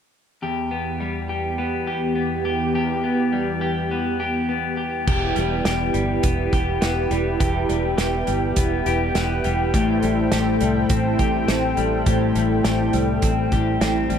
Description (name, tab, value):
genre	dream pop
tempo	103 BPM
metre	4/4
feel	straight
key	E minor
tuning	A4 = 439 Hz
part	warm analog pad	sustained chords	0.4-14.2 s	E2 to G5	-24 LUFS	right 1 dB	chorus
part	clean electric guitar	arpeggios	0.4-14.2 s	E2 to G4	-23 LUFS	left 3 dB	wide subtle chorus, digital delay
part	fingered electric bass	bass	5.1-14.2 s	E1 to C2	-25 LUFS	right 1 dB	none
part	loose indie drum kit	drums	5.1-14.2 s	crash cymbal, hi-hat, kick drum, snare drum	-24 LUFS	right 1 dB	none
room	light reverb, small room ambience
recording	none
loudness	-19 LUFS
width	side -8 dB against mid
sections	0.4-5.1 A section; 5.1-14.2 B section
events	none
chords	0.4 Em; 9.7 Am7